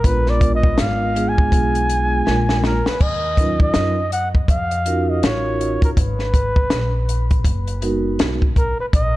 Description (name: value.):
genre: hip hop, jazz-hop.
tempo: 81 BPM.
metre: 4/4.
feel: swing 61% on 16ths.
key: Eb minor.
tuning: A4 = 440 Hz.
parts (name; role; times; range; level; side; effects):
breathy flugelhorn; melody; 0.0-9.2 s; Bb4 to Ab5; -22 LUFS; equal; tape echo.
vibraphone with soft mallets; accompaniment; 0.0-8.4 s; Gb3 to Bb4; -23 LUFS; right 2 dB; none.
upright bass; bass; 0.0-9.2 s; Gb1 to Gb2; -22 LUFS; equal; none.
compact cocktail drum kit; drums; 0.0-9.1 s; crash cymbal, hi-hat, kick drum, snare drum; -18 LUFS; equal; none.
room: little or no reverb.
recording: dark, warm production.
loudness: -16 LUFS.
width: side -17 dB against mid.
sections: 0.0-3.0 A section; 3.0-9.2 B section.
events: flugelhorn solo 0.0-3.0; drum fill 2.3-3.0.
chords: 0.0 Bb7b9; 2.3 Bb7; 3.0 Ebm9; 6.0 Abm9.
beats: | 0.04 0.79 1.53 2.27 | 3.01 3.75 4.49 5.23 | 5.97 6.71 7.45 8.19 | 8.93.